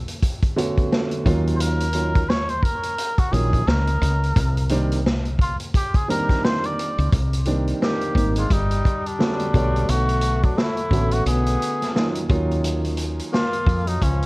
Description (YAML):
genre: hip hop, jazz-hop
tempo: 87 BPM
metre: 4/4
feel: swing 59% on 16ths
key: unclear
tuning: A4 = 442 Hz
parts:
  - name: woody fretless electric bass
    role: bass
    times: 0.0-14.3 s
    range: G1 to F2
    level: -22 LUFS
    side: equal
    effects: none
  - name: vintage drum kit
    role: drums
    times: 0.1-14.3 s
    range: hi-hat, kick drum, snare drum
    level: -22 LUFS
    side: equal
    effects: none
  - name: dark concert grand piano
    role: accompaniment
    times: 0.6-13.4 s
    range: D3 to C#5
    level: -25 LUFS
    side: right 2 dB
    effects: none
  - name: trumpet with cup mute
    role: melody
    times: 1.6-14.3 s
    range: Db4 to D5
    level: -26 LUFS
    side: equal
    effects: tape echo
  - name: mellow tenor saxophone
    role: second line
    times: 7.8-14.3 s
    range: F3 to B3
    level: -28 LUFS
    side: left 2 dB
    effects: none
room: small room ambience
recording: worn, warbling old tape, cassette tape, warbly pitch drift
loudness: -18 LUFS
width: side -24 dB against mid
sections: 0.0-7.1 A section; 7.1-14.3 B section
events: muted trumpet solo 0.0-7.1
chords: 0.0 Bm9; 1.3 Ebm9; 4.4 Cm9; 9.5 Bm9; 12.3 Ebm9